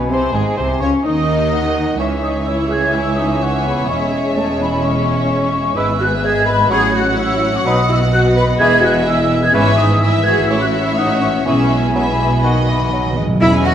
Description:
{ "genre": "quick classical-period movement for symphony orchestra", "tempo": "126 BPM", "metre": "4/4", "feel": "straight", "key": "C# minor, E major from 5.8 s", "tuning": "A4 = 440 Hz", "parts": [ { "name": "dark clarinet", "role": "second line", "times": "0.0-13.7 s", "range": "B4 to G#5", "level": "-24 LUFS", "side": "equal", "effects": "none" }, { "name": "clear bassoon", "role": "accompaniment", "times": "0.0-13.7 s", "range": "G#2 to G#3", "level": "-26 LUFS", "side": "right 2 dB", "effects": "none" }, { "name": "rich studio viola section", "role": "accompaniment", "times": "0.0-13.7 s", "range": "G#3 to B4", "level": "-22 LUFS", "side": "equal", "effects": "none" }, { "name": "mellow French horn section", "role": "sustained chords", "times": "0.0-13.6 s", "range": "E3 to E4", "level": "-23 LUFS", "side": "left 2 dB", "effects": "none" }, { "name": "bright studio double bass section", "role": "bass", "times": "0.0-13.7 s", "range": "E1 to E2", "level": "-22 LUFS", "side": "right 2 dB", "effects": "none" }, { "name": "rich studio cello section", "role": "bass", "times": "0.0-13.7 s", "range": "C#2 to F#4", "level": "-21 LUFS", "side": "right 1 dB", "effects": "none" }, { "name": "rich studio violin section", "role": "melody", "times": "0.1-13.7 s", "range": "G#4 to B5", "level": "-26 LUFS", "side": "left 3 dB", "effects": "none" }, { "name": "mellow cor anglais", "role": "second line", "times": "0.1-13.7 s", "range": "E4 to D#5", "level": "-26 LUFS", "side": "right 1 dB", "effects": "none" }, { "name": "mellow flute section", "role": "second line", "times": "0.1-13.7 s", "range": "E5 to G#6", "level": "-20 LUFS", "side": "left 1 dB", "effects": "none" }, { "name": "rich studio violin section", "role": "second line", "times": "0.1-13.7 s", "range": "G#3 to F#5", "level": "-26 LUFS", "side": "left 3 dB", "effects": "none" }, { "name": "timpani", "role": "percussion", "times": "11.5-13.7 s", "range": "E2 to B2", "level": "-20 LUFS", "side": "right 1 dB", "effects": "none" }, { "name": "warm trumpet", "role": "stabs", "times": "13.4-13.6 s", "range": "E5", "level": "-20 LUFS", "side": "right 2 dB", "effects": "none" } ], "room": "wet scoring stage reverb, RT60 1.6 s", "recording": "none", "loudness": "-13 LUFS", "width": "side -9 dB against mid", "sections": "0.0-13.4 A section", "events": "timpani fill 12.4-13.4", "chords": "0.1 G#7; 2.0 C#m; 3.9 C#m/E; 5.8 E/G#; 6.7 F#m/A; 7.7 B; 8.6 E; 9.5 E/G#; 10.5 A; 11.5 E/B; 12.4 B" }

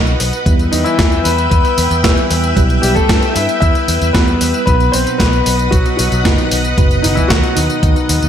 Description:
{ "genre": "italo disco", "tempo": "114 BPM", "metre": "4/4", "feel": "straight", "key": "E harmonic minor", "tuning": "A4 = 440 Hz", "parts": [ { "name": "warm concert grand piano", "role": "melody", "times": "0.0-8.3 s", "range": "D#3 to E5", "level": "-18 LUFS", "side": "left 4 dB", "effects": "ping-pong delay" }, { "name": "string machine, full ensemble", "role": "sustained chords", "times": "0.0-8.3 s", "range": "B4 to E6", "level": "-20 LUFS", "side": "equal", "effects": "ensemble chorus" }, { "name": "fingered electric bass", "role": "bass", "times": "0.0-8.3 s", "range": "E1 to G2", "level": "-18 LUFS", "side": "equal", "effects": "none" }, { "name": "gated 80s digital drum machine", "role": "drums", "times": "0.1-8.3 s", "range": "hi-hat, snare drum, tambourine", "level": "-18 LUFS", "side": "equal", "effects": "gated reverb, gated reverb snare, overdrive" }, { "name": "tine electric piano", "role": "stabs", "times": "0.5-8.3 s", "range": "B2 to B4", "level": "-21 LUFS", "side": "right 4 dB", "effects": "overdrive, fast stereo tremolo" }, { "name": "electronic kick drum", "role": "drums", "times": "0.5-7.9 s", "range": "none", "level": "-14 LUFS", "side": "equal", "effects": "none" } ], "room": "light reverb", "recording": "none", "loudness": "-11 LUFS", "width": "side -9 dB against mid", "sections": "0.0-8.3 A section", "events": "none", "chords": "0.5 Em; 4.7 B" }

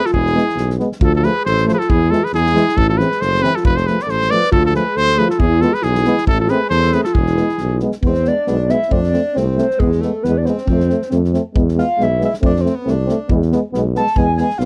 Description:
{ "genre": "balkan folk, Balkan brass band", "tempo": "137 BPM", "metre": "2/4", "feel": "swing 55% on 16ths", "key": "E phrygian dominant", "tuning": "A4 = 440 Hz", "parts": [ { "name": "clear trumpet", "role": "melody", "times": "0.0-7.8 s", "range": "G#4 to D5", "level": "-21 LUFS", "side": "equal", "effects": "none" }, { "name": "pure sine lead", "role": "second line", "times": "0.0-14.7 s", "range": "E4 to A5", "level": "-22 LUFS", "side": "equal", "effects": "chorus" }, { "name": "mellow tuba", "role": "bass", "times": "0.1-14.7 s", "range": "E1 to F2", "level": "-20 LUFS", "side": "equal", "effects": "none" }, { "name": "natural country drum kit", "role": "percussion", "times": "0.1-14.7 s", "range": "kick drum, snare drum", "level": "-23 LUFS", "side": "equal", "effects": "none" }, { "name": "mellow trombone", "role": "accompaniment", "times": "0.3-14.7 s", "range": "G#3 to C4", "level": "-24 LUFS", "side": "equal", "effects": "none" }, { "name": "warm euphonium", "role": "accompaniment", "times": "0.3-14.7 s", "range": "E3 to A3", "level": "-25 LUFS", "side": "equal", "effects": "none" } ], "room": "little or no reverb", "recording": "dry, close 1970s-style studio recording", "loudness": "-16 LUFS", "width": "mono", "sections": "0.0-1.0 A section; 1.0-8.0 A section; 8.0-14.7 B section", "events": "soft synth lead solo 8.0-14.7", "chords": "0.1 E; 1.0 Dm; 1.9 E; 2.8 Am; 3.6 F; 4.5 Dm; 5.4 E; 6.3 Am; 7.2 E; 8.9 F; 9.8 E; 10.7 F; 11.5 E; 12.4 F; 13.3 E" }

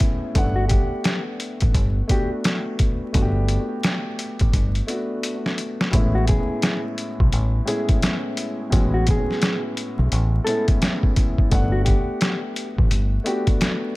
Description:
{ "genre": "hip hop, boom-bap hip-hop", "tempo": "86 BPM", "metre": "4/4", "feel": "swing 62% on 16ths", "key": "A major", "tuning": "A4 = 440 Hz", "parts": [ { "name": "dark concert grand piano", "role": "accompaniment", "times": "0.0-14.0 s", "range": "A2 to F#5", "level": "-27 LUFS", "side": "left 1 dB", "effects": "cassette tape, high-pass filter, low-pass filter, tape echo" }, { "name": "trip hop sampler-style drum kit", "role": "drums", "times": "0.0-13.8 s", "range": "hi-hat, kick drum, snare drum", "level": "-20 LUFS", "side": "equal", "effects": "none" }, { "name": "deep dub fingered electric bass", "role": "bass", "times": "0.4-13.2 s", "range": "G1 to B1", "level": "-20 LUFS", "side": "equal", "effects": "none" }, { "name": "mellow electric guitar", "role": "melody", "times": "0.6-13.5 s", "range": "F#4 to A4", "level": "-28 LUFS", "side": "equal", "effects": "high-pass filter, low-pass filter, tape echo" } ], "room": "little or no reverb", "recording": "echo-heavy mix, vinyl crackle", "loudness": "-19 LUFS", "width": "side -20 dB against mid", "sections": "0.0-5.9 A section; 5.9-14.0 B section", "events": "drum fill 4.5-5.9", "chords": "0.4 Gmaj9; 5.9 Amaj9; 11.5 Gmaj9" }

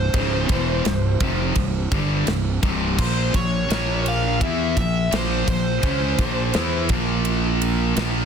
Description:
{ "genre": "heavy metal", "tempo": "84 BPM", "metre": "4/4", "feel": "straight", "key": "unclear", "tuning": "A4 = 440 Hz", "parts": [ { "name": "nasal lead guitar with a parked wah", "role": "melody", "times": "0.0-6.9 s", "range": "C5 to F5", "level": "-26 LUFS", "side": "right 1 dB", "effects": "overdrive, digital delay" }, { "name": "fuzz guitar", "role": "riff", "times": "0.0-8.2 s", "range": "C2 to E4", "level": "-28 LUFS", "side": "right 2 dB", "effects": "none" }, { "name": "scooped high-gain guitar", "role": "riff", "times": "0.0-8.2 s", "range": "C2 to E4", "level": "-27 LUFS", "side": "right 11 dB", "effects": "distortion" }, { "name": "tight distorted guitar", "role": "riff", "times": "0.0-8.2 s", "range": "C2 to E4", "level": "-26 LUFS", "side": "left 12 dB", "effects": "distortion" }, { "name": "fuzz fingered electric bass", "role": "bass", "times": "0.0-8.2 s", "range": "C1 to E2", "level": "-25 LUFS", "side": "equal", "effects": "overdrive" }, { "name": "modern studio drum kit", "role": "drums", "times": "0.1-8.1 s", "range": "crash cymbal, kick drum, ride cymbal, snare drum", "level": "-25 LUFS", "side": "equal", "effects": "soft clipping on kick" } ], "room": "little or no reverb", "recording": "dense, heavily limited modern master", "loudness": "-19 LUFS", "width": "side -7 dB against mid", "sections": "0.0-8.2 A section", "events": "none", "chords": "0.0 C; 3.0 Bb5" }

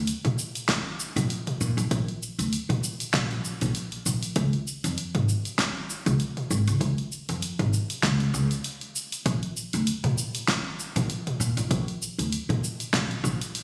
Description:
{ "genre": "sunset chillout", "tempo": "98 BPM", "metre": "4/4", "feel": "swing 56% on 16ths", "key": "unclear", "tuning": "A4 = 440 Hz", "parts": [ { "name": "upright bass", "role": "bass", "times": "0.0-13.4 s", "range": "Ab1 to Bb2", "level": "-29 LUFS", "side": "equal", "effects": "tube saturation" }, { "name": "deep house drum kit", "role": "drums", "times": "0.1-13.6 s", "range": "hi-hat, shaker, snare drum, toms", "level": "-32 LUFS", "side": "equal", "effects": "none" }, { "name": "electronic kick drum", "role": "drums", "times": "0.7-13.4 s", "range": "none", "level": "-35 LUFS", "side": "equal", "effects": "none" } ], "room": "light reverb, digital ambience", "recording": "recorded on a phone in the room, studio reverb", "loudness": "-27 LUFS", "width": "mono", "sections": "0.0-13.6 A section", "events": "none", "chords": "none" }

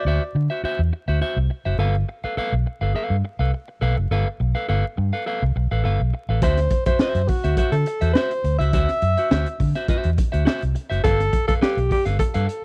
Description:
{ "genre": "funk", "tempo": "104 BPM", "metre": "4/4", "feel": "straight", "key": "unclear", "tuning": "A4 = 440 Hz", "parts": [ { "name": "mellow alto saxophone", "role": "melody", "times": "0.0-0.5, 6.4-12.6 s", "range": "F#4 to E5", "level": "-26 LUFS", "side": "equal", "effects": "none" }, { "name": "clean electric guitar", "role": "accompaniment", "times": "0.0-12.5 s", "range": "F#4 to F5", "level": "-30 LUFS", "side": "equal", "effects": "none" }, { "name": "vintage muted fingered electric bass", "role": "bass", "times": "0.1-12.5 s", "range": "F#1 to D3", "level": "-23 LUFS", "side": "equal", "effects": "none" }, { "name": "crunchy breakbeat drum kit", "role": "drums", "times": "6.4-12.6 s", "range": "hi-hat, kick drum, snare drum", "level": "-24 LUFS", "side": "equal", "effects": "none" } ], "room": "small room ambience", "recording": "dry, close 1970s-style studio recording, vinyl crackle", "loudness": "-22 LUFS", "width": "mono", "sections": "0.0-12.6 A section", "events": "none", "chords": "0.0 D9; 1.8 G9; 6.4 D9; 11.0 G9" }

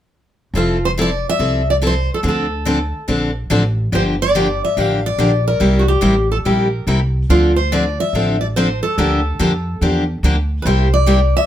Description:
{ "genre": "acoustic string swing (jazz manouche)", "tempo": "143 BPM", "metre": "4/4", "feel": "swing 63% on 8ths", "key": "F major", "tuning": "A4 = 439 Hz", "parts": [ { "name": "upright bass", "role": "bass", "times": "0.5-11.3 s", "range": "F1 to F2", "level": "-18 LUFS", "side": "equal", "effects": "none" }, { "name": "picked steel-string acoustic guitar", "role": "melody", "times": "0.6-11.5 s", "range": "F4 to F5", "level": "-19 LUFS", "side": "equal", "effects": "none" }, { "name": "picked steel-string acoustic guitar", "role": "accompaniment", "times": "0.6-11.2 s", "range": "C3 to A4", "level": "-18 LUFS", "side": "left 1 dB", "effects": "none" } ], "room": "light reverb", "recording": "none", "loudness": "-14 LUFS", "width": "side -11 dB against mid", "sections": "0.5-11.5 A section", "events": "none", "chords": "0.5 Fmaj7; 2.2 Dm7; 3.9 Gm7; 5.6 C7; 7.3 Dm7; 9.0 Gm7/D; 10.7 C7" }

